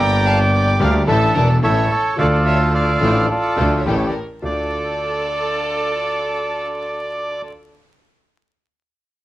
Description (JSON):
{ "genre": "tango", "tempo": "108 BPM", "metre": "4/4", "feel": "rubato", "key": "D harmonic minor", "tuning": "A4 = 440 Hz", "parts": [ { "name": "bandoneon", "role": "melody", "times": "0.0-7.4 s", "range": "F4 to Bb5", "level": "-19 LUFS", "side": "right 1 dB", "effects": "slapback echo" }, { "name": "warm chamber violin section", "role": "second line", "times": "0.0-7.4 s", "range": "A4 to G5", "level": "-28 LUFS", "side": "right 1 dB", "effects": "none" }, { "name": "warm concert grand piano", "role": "accompaniment", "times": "0.0-7.4 s", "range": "E1 to A4", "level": "-22 LUFS", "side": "left 1 dB", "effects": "none" }, { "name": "rich studio string section", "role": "stabs", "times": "0.0-7.4 s", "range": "C#4 to Bb4", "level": "-32 LUFS", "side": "left 1 dB", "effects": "none" }, { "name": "clear double bass", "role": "bass", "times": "0.0-4.7 s", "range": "E1 to D2", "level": "-19 LUFS", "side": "equal", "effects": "none" } ], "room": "moderate studio reverb, RT60 0.7 s", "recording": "worn, warbling old tape, cassette tape, vinyl crackle, warbly pitch drift", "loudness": "-16 LUFS", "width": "side -15 dB against mid", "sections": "0.0-4.4 A section; 4.4-6.6 B section", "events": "none", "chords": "0.0 Gm; 1.1 Asus4; 1.6 A; 2.2 Dm; 3.9 A7; 4.4 Dm", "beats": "0.52 1.07 1.62 | 2.17 2.73 3.29 3.85 | 4.41 4.97 5.53 6.08" }